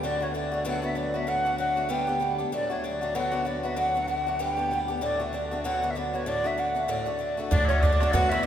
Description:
celtic folk, Celtic reel; 192 BPM; 4/4; swing 58% on 8ths; D major; A4 = 441 Hz
breathy mellow wooden flute; melody; 0.0-8.5 s; C#5 to G5; -27 LUFS; right 1 dB
picked swing-style acoustic guitar; accompaniment; 0.0-8.4 s; D2 to G4; -31 LUFS; left 3 dB
rich cello; drone; 0.0-7.5 s; D2; -37 LUFS; equal
Irish bouzouki; second line; 7.5-8.5 s; C#4 to F#4; -31 LUFS; right 4 dB
loud bright bagpipes; second line; 7.5-8.4 s; C#4 to A4; -31 LUFS; left 2 dB
upright bass; bass; 7.5-8.5 s; D2; -25 LUFS; equal
bodhran; percussion; 7.5-8.4 s; -26 LUFS; right 1 dB
wet church reverb, RT60 3.4 s; recorded in a church or concert hall; -24 LUFS; side -10 dB against mid
0.0-7.5 A section
0.0 D; 0.6 Bm/D; 1.3 D; 1.9 G; 2.5 D; 3.1 Bm/D; 3.8 D; 4.4 G; 5.0 D; 5.6 Bm/D; 6.3 D

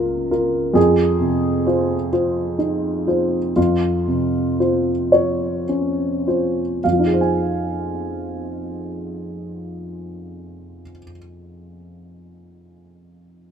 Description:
classical; 34-45 BPM (dotted quarters); 6/8; rubato; F minor; A4 = 440 Hz
dark upright piano; accompaniment; 0.0-13.5 s; Db2 to Ab5; -18 LUFS; equal
light reverb; minimal, uncompressed stereo recording; -17 LUFS; side -8 dB against mid
0.0-6.8 A section; 6.8-10.2 B section
slowing down 0.0-6.8
0.0 Bbm/Db; 0.8 Fm7; 3.6 Dbmaj7/F; 6.8 Fm7

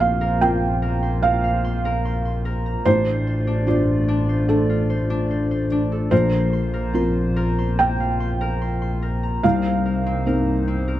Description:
neoclassical piano and strings; 73 BPM; 4/4; rubato; Bb major; A4 = 440 Hz
felt-muted upright piano; accompaniment; 0.0-11.0 s; A1 to G5; -21 LUFS; right 1 dB
hollow soft pad; sustained chords; 0.0-11.0 s; A3 to D5; -30 LUFS; equal; chorus
concert harp; arpeggios; 0.0-11.0 s; C4 to C6; -27 LUFS; left 2 dB; slapback echo
dark double bass; bass; 0.0-11.0 s; A1 to C2; -24 LUFS; equal
light reverb; -18 LUFS; side -13 dB against mid
0.0-11.0 A section
0.0 Bbsus2; 2.9 Dm7/A; 6.1 Bbsus2; 9.4 Cm7

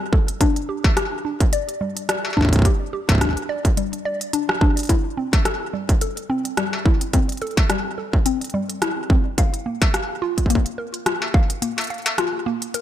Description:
IDM; 107 BPM; 4/4; swing 56% on 16ths; A minor; A4 = 439 Hz
mallet-like synth pluck; arpeggios; 0.1-12.8 s; G3 to F5; -25 LUFS; left 2 dB; chorus, ping-pong delay
electronic kick drum; drums; 0.1-11.5 s; -18 LUFS; equal; distortion
industrial drum kit; drums; 0.3-12.8 s; hi-hat, rim click, struck metal; -24 LUFS; equal; digital delay
little or no reverb; -18 LUFS; side -11 dB against mid
0.0-12.8 A section
filter sweep on synth arpeggio sound 0.0-12.8; break 11.6-12.8

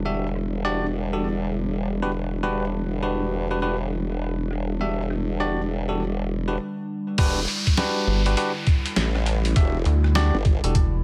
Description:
glitch hop; 101 BPM; 4/4; swing 63% on 16ths; E minor; A4 = 445 Hz
warbly tape-like pad; sustained chords; 0.0-11.0 s; D3 to E4; -33 LUFS; equal; chorus, built-in reverb, vintage 12-bit sampler grit, sidechain pumping
formant-sweep wobble bass; bass; 0.0-10.6 s; E1 to A1; -29 LUFS; equal; chorus
barky tine electric piano; stabs; 0.1-10.8 s; D4 to E5; -31 LUFS; equal; sidechain pumping, tape echo
boom bap sampler-style drum kit; drums; 0.4-0.5, 4.5-10.9 s; crash cymbal, hi-hat, rim click, snare drum; -31 LUFS; equal; low-pass filter on snare, small room reverb, low-pass filter on hats, low-pass filter on cymbals
electronic kick drum; drums; 7.2-10.9 s; -22 LUFS; equal; small room reverb
downlifter; sound effects; 7.2-11.0 s; -34 LUFS; equal
rubbery square bass; bass; 8.1-11.0 s; E1 to D2; -22 LUFS; equal
light reverb; -24 LUFS; mono
0.0-7.2 A section; 7.2-11.0 B section
break 6.6-7.2; drop 7.2-11.0
0.0 Em7

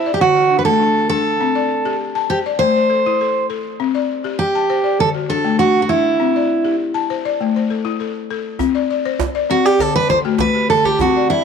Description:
west african traditional, West African string and xylophone music; 100 BPM; 4/4; straight; C lydian; A4 = 441 Hz
picked steel-string acoustic guitar; melody; 0.0-11.4 s; E4 to C5; -16 LUFS; right 3 dB
balafon; arpeggios; 0.0-11.4 s; D3 to A5; -19 LUFS; left 9 dB
djembe; percussion; 8.6-11.2 s; -24 LUFS; right 6 dB
light reverb, small room reverb; 1960s-style stereo with parts hard left and right; -14 LUFS; side -6 dB against mid
0.0-8.6 A section; 8.6-11.4 B section
steel-string acoustic guitar solo 8.6-11.4
0.2 D; 1.4 C5; 2.6 Am; 3.8 C5; 5.0 D; 6.2 C; 7.4 Am; 8.6 Csus2; 9.8 D

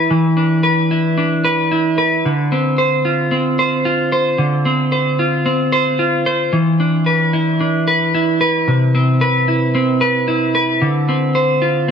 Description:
dream pop; 112 BPM; 4/4; straight; D dorian; A4 = 435 Hz
semi-hollow electric guitar; solo; 0.0-11.9 s; C3 to C5; -13 LUFS; equal; wide subtle chorus, ping-pong delay
moderate lush hall reverb, RT60 2.0 s; worn, warbling old tape, cassette tape, warbly pitch drift; -13 LUFS; side -7 dB against mid
0.0-10.8 A section; 10.8-11.9 B section
0.0 E5; 2.2 Dm7; 6.5 E5; 8.7 Cmaj7; 10.8 Dm7

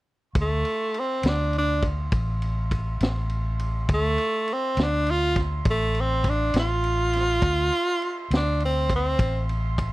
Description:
slow blues; 68 BPM (dotted quarters); 12/8; straight; D minor; A4 = 442 Hz
warm horn section; sustained chords; 0.3-9.9 s; E5 to C6; -37 LUFS; right 4 dB
bright tenor saxophone; melody; 0.4-9.5 s; A3 to F4; -24 LUFS; right 1 dB
vintage muted fingered electric bass; bass; 0.4-9.9 s; A1 to D2; -25 LUFS; equal
vintage drum kit; drums; 0.4-9.9 s; kick drum, ride cymbal, snare drum; -27 LUFS; equal
studio reverb; dry, close 1970s-style studio recording; -22 LUFS; side -18 dB against mid
0.4-9.9 A section
tenor saxophone solo 0.4-9.9
0.4 Dm9

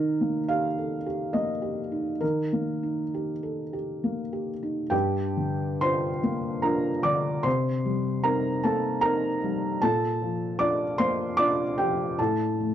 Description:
neoclassical minimalist piano; 64-78 BPM; 3/4; rubato; G minor; A4 = 439 Hz
felt-muted upright piano; solo; 0.0-12.7 s; G2 to D6; -24 LUFS; equal
studio ambience; dry, close 1970s-style studio recording; -24 LUFS; side -10 dB against mid
0.0-4.9 A section; 4.9-12.7 B section
0.0 Eb; 4.9 Gm7; 7.5 Cm7; 9.8 Bbmaj7; 12.2 N.C.

